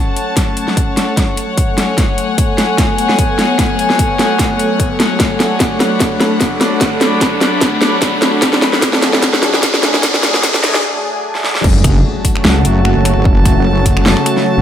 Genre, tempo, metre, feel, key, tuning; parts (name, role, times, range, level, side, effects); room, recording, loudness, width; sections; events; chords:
heavy wobble dubstep; 149 BPM; 4/4; swing 54% on 16ths, half-time; F# minor; A4 = 440 Hz
lush unison pad; sustained chords; 0.0-14.6 s; C#3 to A4; -18 LUFS; equal; chorus, sidechain pumping
riser and impact; sound effects; 1.3-13.3 s; -23 LUFS; equal
rich chamber string section; texture; 0.0-14.6 s; D4 to B5; -19 LUFS; left 2 dB; sidechain pumping
dubstep drum kit; drums; 0.2-14.4 s; crash cymbal, finger snaps, hi-hat, snare drum; -15 LUFS; equal
electronic kick drum; drums; 0.4-13.9 s; -16 LUFS; equal
wobble bass; bass; 11.6-14.6 s; F#1 to C#2; -13 LUFS; equal; chorus, overdrive
moderate plate reverb, RT60 1.3 s; dreamy mix soaked in reverb, high-pass filter; -11 LUFS; side -10 dB against mid
0.0-11.6 A section; 11.6-14.6 B section
build-up 0.0-11.6; drum fill 0.0-10.8, 11.3-11.6; filter sweep on analog synth pad 0.0-11.6; filter sweep 0.0-11.6; riser 1.3-10.8; break 10.8-11.6; drop 11.6-14.6; impact 11.6-13.3
0.0 F#m; 5.2 D; 11.6 F#m